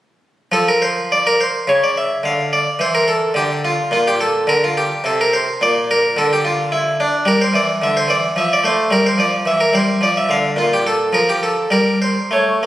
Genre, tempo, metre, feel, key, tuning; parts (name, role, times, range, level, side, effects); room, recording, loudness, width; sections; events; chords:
classical, baroque-style suite movement for harpsichord; 107 BPM; 3/4; rubato; A4 = 440 Hz
harpsichord; solo; 0.5-12.7 s; Bb2 to F5; -14 LUFS; equal
moderate concert hall reverb, RT60 2.0 s; recorded on a phone in the room, club reverb; -14 LUFS; side -14 dB against mid
0.5-12.7 A section
0.5 N.C.; 2.2 Dmadd9; 3.9 Bb; 5.0 N.C.; 5.6 Bb; 7.3 G5; 8.4 F; 8.9 Em7b5; 10.0 Dm/F; 10.6 Bb5; 11.7 N.C.